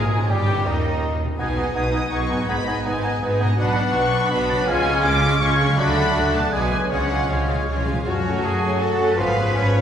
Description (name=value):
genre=classical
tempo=163 BPM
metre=3/4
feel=straight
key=G# minor, F# minor from 3.6 s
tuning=A4 = 441 Hz
part: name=rich symphonic violin section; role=melody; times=0.0-9.8 s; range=C#5 to D#6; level=-27 LUFS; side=left 1 dB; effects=none
part: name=bright clarinet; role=second line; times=0.0-9.8 s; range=B3 to G#4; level=-29 LUFS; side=left 2 dB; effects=none
part: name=clear symphonic violin section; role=second line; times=0.0-9.8 s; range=B3 to F#5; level=-31 LUFS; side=equal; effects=none
part: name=mellow hollow flute section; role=second line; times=0.0-9.8 s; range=D#5 to A6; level=-30 LUFS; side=left 1 dB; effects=none
part: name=warm cor anglais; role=second line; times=0.0-9.8 s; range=D#4 to F#5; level=-31 LUFS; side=equal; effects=none
part: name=rich symphonic viola section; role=accompaniment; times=0.0-9.8 s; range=C#3 to B4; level=-29 LUFS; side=right 2 dB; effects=none
part: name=warm bassoon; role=accompaniment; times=0.0-9.8 s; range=D#3 to B3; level=-28 LUFS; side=right 1 dB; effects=none
part: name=dark French horn section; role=sustained chords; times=0.0-9.8 s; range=D#3 to G#4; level=-32 LUFS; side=left 3 dB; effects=none
part: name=concert harp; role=arpeggios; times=0.0-9.8 s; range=F#2 to C#5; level=-29 LUFS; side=left 3 dB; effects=none
part: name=clear symphonic cello section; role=bass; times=0.0-9.8 s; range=D#2 to B4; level=-26 LUFS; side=right 1 dB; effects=none
part: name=rich symphonic double bass section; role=bass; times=0.0-9.8 s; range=G1 to F#2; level=-25 LUFS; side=right 2 dB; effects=none
part: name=timpani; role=percussion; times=6.9-8.0 s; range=C#3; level=-32 LUFS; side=equal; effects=none
room=wet recital hall reverb, RT60 1.7 s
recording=recorded in a church or concert hall, small room reverb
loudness=-18 LUFS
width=side -9 dB against mid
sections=0.0-8.1 A section; 8.1-9.8 B section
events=timpani fill 6.9-8.1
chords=0.3 D#7/G; 1.4 G#m/B; 2.5 G#m; 3.6 Bm; 4.7 C#; 5.8 D; 6.5 G#dim/B; 6.9 C#; 8.1 F#m; 9.2 C#7/G#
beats=| 0.30 0.67 1.03 | 1.40 1.76 2.12 | 2.49 2.85 3.22 | 3.58 3.94 4.31 | 4.68 5.04 5.41 | 5.78 6.15 6.53 | 6.91 7.30 7.68 | 8.07 8.44 8.81 | 9.18 9.55